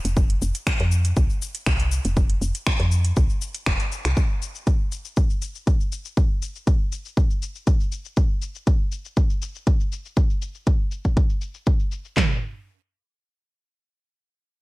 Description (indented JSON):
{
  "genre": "afro house",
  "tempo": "120 BPM",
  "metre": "4/4",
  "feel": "straight",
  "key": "unclear",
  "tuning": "A4 = 440 Hz",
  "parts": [
    { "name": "woody FM bass", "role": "bass", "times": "0.0-4.1 s", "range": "F1 to F2", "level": "-22 LUFS", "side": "equal", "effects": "sidechain pumping" },
    { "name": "house drum kit", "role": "drums", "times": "0.1-12.1 s", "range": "finger snaps, hi-hat, shaker", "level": "-30 LUFS", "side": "left 1 dB", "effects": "low-pass filter on snare, low-pass filter on hats, low-pass filter on toms, low-pass filter on perc, gated reverb" },
    { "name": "house drum kit", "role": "drums", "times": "0.2-12.3 s", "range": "handclaps, kick drum, toms", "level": "-20 LUFS", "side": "equal", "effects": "none" }
  ],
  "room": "little or no reverb",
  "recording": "bright 1980s-style digital production",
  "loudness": "-20 LUFS",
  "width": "side -21 dB against mid",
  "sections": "0.0-12.2 A section; 12.2-14.6 B section",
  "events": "none",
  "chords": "none"
}